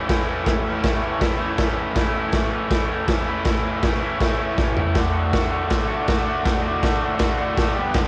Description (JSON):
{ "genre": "garage rock duo or trio", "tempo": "161 BPM", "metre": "4/4", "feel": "straight", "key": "A mixolydian", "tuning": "A4 = 442 Hz", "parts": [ { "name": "raw garage guitar", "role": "riff", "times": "0.0-8.1 s", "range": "G2 to G4", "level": "-25 LUFS", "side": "equal", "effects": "overdrive, cassette tape" }, { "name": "raw garage drum kit", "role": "drums", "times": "0.1-8.0 s", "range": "crash cymbal, kick drum, snare drum, toms", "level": "-24 LUFS", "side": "equal", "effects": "cassette tape" } ], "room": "moderate spring reverb, RT60 1.1 s", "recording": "home recording on cassette", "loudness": "-22 LUFS", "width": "mono", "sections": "0.0-8.1 A section", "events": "drum fill 4.6-5.0", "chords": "0.0 A; 5.0 D/A" }